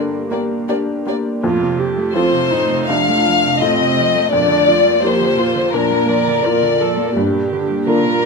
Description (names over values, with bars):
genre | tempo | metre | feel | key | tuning
neoclassical piano and strings | 84 BPM | 4/4 | rubato | unclear | A4 = 441 Hz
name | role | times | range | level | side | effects
warm chamber violin section | melody | 0.0-8.3 s | Bb4 to F5 | -16 LUFS | left 5 dB | none
clear cello | second line | 0.0-8.3 s | G2 to Bb3 | -25 LUFS | right 7 dB | none
felt-muted upright piano | accompaniment | 0.0-8.3 s | C2 to G5 | -21 LUFS | left 2 dB | none
warbly tape-like pad | sustained chords | 0.0-8.3 s | A3 to F5 | -25 LUFS | right 1 dB | chorus, built-in reverb
warm viola | accompaniment | 0.3-8.3 s | Bb3 to D5 | -20 LUFS | right 5 dB | none
room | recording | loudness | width
moderate large studio reverb, RT60 0.9 s | minimal, uncompressed stereo recording | -13 LUFS | side -4 dB against mid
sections
0.0-1.4 A section; 1.4-8.3 B section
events
none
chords
0.0 Gm; 1.4 F; 4.3 Bb/F; 7.2 Gm